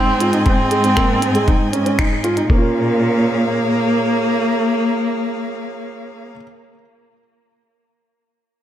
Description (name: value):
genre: piano and strings electronica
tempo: 118 BPM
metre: 4/4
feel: straight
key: Bb minor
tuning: A4 = 440 Hz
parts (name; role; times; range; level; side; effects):
- dark cello; melody; 0.0-6.3 s; Bb3 to C4; -20 LUFS; equal; tape echo
- warm string quartet; sustained chords; 0.0-6.3 s; Bb3 to Ab5; -25 LUFS; left 1 dB; sidechain pumping
- felt-muted upright piano; riff; 0.0-6.4 s; Ab3 to Bb4; -21 LUFS; right 1 dB; tape echo
- warm chamber cello section; bass; 0.0-4.0 s; Ab2 to Bb2; -21 LUFS; equal; sidechain pumping
- minimal click drum kit; drums; 0.2-2.5 s; finger snaps, hi-hat; -25 LUFS; equal; none
- electronic kick drum; drums; 0.5-2.6 s; none; -17 LUFS; equal; none
room: moderate concert hall reverb, RT60 1.9 s, small room reverb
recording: none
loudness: -14 LUFS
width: side -11 dB against mid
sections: 0.0-2.5 A section; 2.5-6.6 B section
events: drop 0.0-2.5; band accent 2.0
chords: 0.0 Ab; 2.5 Bbm7